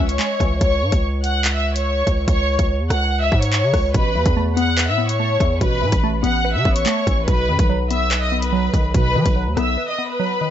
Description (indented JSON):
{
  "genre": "hip hop, drill",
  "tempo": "144 BPM",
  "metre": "4/4",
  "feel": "half-time",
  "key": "C# minor",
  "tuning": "A4 = 440 Hz",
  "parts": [
    { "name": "warm studio violin section", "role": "melody", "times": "0.0-10.5 s", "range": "B4 to F#6", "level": "-21 LUFS", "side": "left 1 dB", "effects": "none" },
    { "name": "glassy wavetable pluck", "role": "accompaniment", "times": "0.0-0.6, 3.9-10.5 s", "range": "B2 to C#5", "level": "-24 LUFS", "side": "equal", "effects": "chorus" },
    { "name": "distorted 808-style bass", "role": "bass", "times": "0.0-9.8 s", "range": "A1 to F#3", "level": "-21 LUFS", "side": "equal", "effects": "distortion" },
    { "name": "drill drum kit", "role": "drums", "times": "0.1-9.7 s", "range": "handclaps, hi-hat, kick drum, rim click", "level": "-20 LUFS", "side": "equal", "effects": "none" }
  ],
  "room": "light reverb, digital ambience",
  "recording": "nothing above 7.9 kHz",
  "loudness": "-16 LUFS",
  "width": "side -10 dB against mid",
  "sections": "0.0-10.5 A section",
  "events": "break 9.8-10.5",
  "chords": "0.0 C#m; 3.9 Asus2; 7.3 B",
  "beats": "0.19 | 0.61 1.03 1.44 1.86 | 2.28 2.69 3.11 3.53 | 3.94 4.36 4.78 5.19 | 5.61 6.03 6.44 6.86 | 7.28 7.69 8.11 8.53 | 8.94 9.36 9.78 10.19"
}